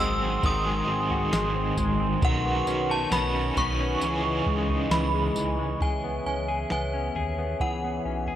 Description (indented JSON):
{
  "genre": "dream pop",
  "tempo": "67 BPM",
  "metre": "4/4",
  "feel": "straight",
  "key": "C# minor",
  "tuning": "A4 = 440 Hz",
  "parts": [
    { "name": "synth chime", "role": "melody", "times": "0.0-8.4 s", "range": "F#5 to E6", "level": "-30 LUFS", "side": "right 1 dB", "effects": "ensemble chorus, phaser, tape echo" },
    { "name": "crunchy overdriven guitar", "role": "accompaniment", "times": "0.0-6.3 s", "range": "G#2 to G#4", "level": "-30 LUFS", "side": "right 3 dB", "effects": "tremolo, lush chorus" },
    { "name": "glass harmonica", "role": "sustained chords", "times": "0.0-8.4 s", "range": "B3 to C#6", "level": "-32 LUFS", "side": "right 1 dB", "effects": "none" },
    { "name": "semi-hollow electric guitar", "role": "arpeggios", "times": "0.0-8.4 s", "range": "D#3 to G#4", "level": "-31 LUFS", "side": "left 4 dB", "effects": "analog chorus, tape echo" },
    { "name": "chorused synth bass", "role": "bass", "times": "0.0-8.4 s", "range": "G#1 to D#2", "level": "-31 LUFS", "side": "equal", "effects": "none" },
    { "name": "soft vintage rhythm box", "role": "drums", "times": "0.4-8.4 s", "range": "kick drum, snare drum, tambourine, toms", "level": "-30 LUFS", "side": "right 1 dB", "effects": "none" }
  ],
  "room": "light reverb",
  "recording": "worn, warbling old tape, cassette tape, warbly pitch drift",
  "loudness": "-24 LUFS",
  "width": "side -11 dB against mid",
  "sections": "0.0-5.8 A section; 5.8-8.4 B section",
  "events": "none",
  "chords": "0.0 G#7; 2.2 Badd9; 4.0 C#madd9; 5.8 C#m7"
}